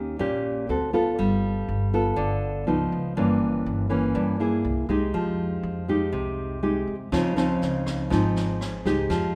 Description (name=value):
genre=bossa nova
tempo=121 BPM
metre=4/4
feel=straight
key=unclear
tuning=A4 = 439 Hz
part: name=nylon-string guitar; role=accompaniment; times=0.0-9.4 s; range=G2 to A4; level=-26 LUFS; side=equal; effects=none
part: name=upright bass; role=bass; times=0.0-9.4 s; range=G1 to G2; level=-33 LUFS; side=equal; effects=none
part: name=jazz brush drum kit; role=drums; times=7.1-9.2 s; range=kick drum, rim click, snare drum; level=-37 LUFS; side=equal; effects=none
room=moderate concert hall reverb, RT60 1.9 s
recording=none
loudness=-25 LUFS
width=mono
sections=0.0-9.4 A section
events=none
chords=0.0 Eb7; 0.7 D7; 1.2 G9; 2.7 Db9; 3.2 Gdim7; 4.6 C7b13; 5.1 Fm9; 7.1 Dbmaj9